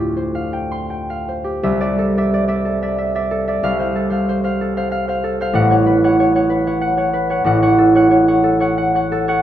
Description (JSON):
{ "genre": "classical, solo harp piece", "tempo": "93 BPM", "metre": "3/4", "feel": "uneven beats, rubato", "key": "unclear", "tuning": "A4 = 440 Hz", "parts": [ { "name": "concert harp", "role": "solo", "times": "0.0-9.4 s", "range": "A1 to C6", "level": "-14 LUFS", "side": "equal", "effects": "none" } ], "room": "wet recital hall reverb, RT60 1.6 s", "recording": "dark, warm production", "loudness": "-14 LUFS", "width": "side -11 dB against mid", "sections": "0.0-1.6 A section; 1.6-9.4 B section", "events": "none", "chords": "0.0 Dm11; 1.6 C69; 3.6 Fmaj7/C; 5.6 A69; 7.5 A6" }